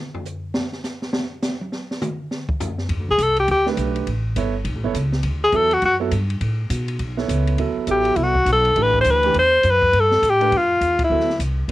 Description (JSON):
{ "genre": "jazz, small-group swing and bop", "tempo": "205 BPM", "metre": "4/4", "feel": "swing 62% on 8ths", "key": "D mixolydian", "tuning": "A4 = 440 Hz", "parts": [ { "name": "open jazz drum kit", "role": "drums", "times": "0.1-11.7 s", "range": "hi-hat, kick drum, ride cymbal, snare drum, toms", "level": "-28 LUFS", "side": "equal", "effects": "none" }, { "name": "upright bass", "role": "bass", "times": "2.9-11.7 s", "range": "G1 to B2", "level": "-23 LUFS", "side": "equal", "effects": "transformer saturation" }, { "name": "bright alto saxophone", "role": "melody", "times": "3.1-11.4 s", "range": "E4 to C5", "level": "-16 LUFS", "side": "left 1 dB", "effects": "cassette tape" }, { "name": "clear concert grand piano", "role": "accompaniment", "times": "3.7-11.7 s", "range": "E3 to C#5", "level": "-25 LUFS", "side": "right 9 dB", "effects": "cassette tape" } ], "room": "light reverb", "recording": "home recording on cassette", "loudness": "-17 LUFS", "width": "side -16 dB against mid", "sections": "0.0-7.6 A section; 7.6-11.7 B section", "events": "alto saxophone solo 0.0-7.6; drum solo 0.0-2.9; band accent 11.0", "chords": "0.0 N.C.; 2.9 Em7 (rootless); 4.1 A9; 5.2 Dadd9; 6.4 Aadd9; 7.6 D9; 9.9 G7sus2; 11.1 D9" }